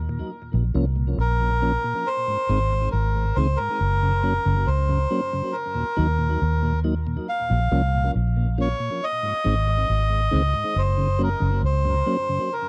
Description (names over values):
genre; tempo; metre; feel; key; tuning
reggae; 69 BPM; 4/4; straight; Bb minor; A4 = 443 Hz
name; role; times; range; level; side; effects
vintage muted fingered electric bass; bass; 0.0-12.0 s; Gb1 to Eb2; -24 LUFS; equal; none
mellow tonewheel organ; accompaniment; 0.1-12.4 s; Eb2 to Eb4; -31 LUFS; equal; slow rotary speaker, tape echo
melodica; melody; 1.2-12.7 s; Bb4 to F5; -27 LUFS; equal; tape echo
room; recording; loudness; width
little or no reverb; dry, close 1970s-style studio recording; -23 LUFS; mono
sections
0.0-7.3 A section; 7.3-12.7 B section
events
none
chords
0.3 Bbm; 2.1 Ab; 3.8 Gb; 5.5 Ebm; 7.3 Bbm; 9.0 Ab; 10.8 Gb